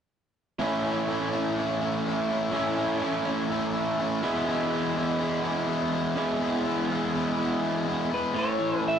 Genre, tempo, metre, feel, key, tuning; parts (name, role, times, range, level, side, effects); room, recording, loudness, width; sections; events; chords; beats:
rock; 124 BPM; 4/4; straight; A major; A4 = 441 Hz
cranked stack guitar; riff; 0.6-9.0 s; A2 to E4; -29 LUFS; left 3 dB; overdrive
overdriven electric guitar; riff; 0.6-9.0 s; E2 to E4; -27 LUFS; right 2 dB
electric slide guitar; melody; 8.1-9.0 s; B4 to E5; -27 LUFS; equal
moderate small room ambience, RT60 0.5 s; rough rehearsal-room recording, tube saturation, nothing above 10.4 kHz; -25 LUFS; side -8 dB against mid
0.6-8.3 A section
0.6 A; 4.2 E; 8.3 A
| 0.60 1.09 1.57 2.06 | 2.54 3.02 3.51 3.99 | 4.47 4.96 5.44 5.92 | 6.41 6.89 7.38 7.86 | 8.34 8.83